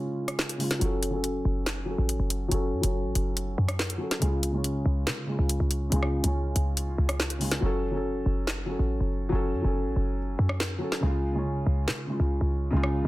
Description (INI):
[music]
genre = hip hop, drill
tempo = 141 BPM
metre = 4/4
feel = half-time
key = F# harmonic minor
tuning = A4 = 439 Hz
[part]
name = felt-muted upright piano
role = accompaniment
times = 0.0-13.1 s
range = C#3 to A4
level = -30 LUFS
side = equal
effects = low-pass filter
[part]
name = drill drum kit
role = drums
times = 0.3-12.9 s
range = handclaps, hi-hat, rim click, snare drum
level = -30 LUFS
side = equal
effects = overdrive
[part]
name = short 808-style bass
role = bass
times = 0.8-13.1 s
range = F#1 to C#3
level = -27 LUFS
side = equal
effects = none
[sound]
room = digital ambience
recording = dense, heavily limited modern master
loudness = -25 LUFS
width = side -18 dB against mid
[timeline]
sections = 0.0-13.1 A section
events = break 0.0-0.8; filter sweep on felt piano 0.0-7.6; hi-hats muted 7.6-13.1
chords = 0.0 C#; 0.8 F#m; 4.2 C#; 7.6 F#m; 11.0 C#